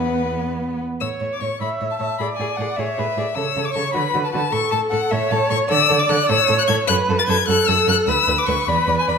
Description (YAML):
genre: quick classical-period movement for string quartet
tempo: 102 BPM (dotted quarters)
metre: 6/8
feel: straight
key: A major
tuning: A4 = 440 Hz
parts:
  - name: warm violin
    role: melody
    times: 0.0-9.2 s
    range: B4 to A6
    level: -21 LUFS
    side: left 8 dB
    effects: none
  - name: warm violin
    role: second line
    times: 0.0-9.2 s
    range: B3 to D5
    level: -27 LUFS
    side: left 1 dB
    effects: none
  - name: warm viola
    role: accompaniment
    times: 0.0-9.2 s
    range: B3 to E5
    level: -22 LUFS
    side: right 2 dB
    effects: none
  - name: warm cello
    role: bass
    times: 0.0-9.2 s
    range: D2 to D3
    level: -24 LUFS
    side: right 4 dB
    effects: none
room: moderate scoring stage reverb, RT60 1.6 s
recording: minimal, uncompressed stereo recording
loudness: -17 LUFS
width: side -6 dB against mid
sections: 0.0-1.0 A section; 1.0-9.2 B section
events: none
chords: 0.0 E5; 1.0 A; 2.2 E7/A; 3.4 A; 4.0 D; 4.5 A; 5.7 D5; 6.3 A; 6.9 F#m; 8.1 Bm; 8.7 E5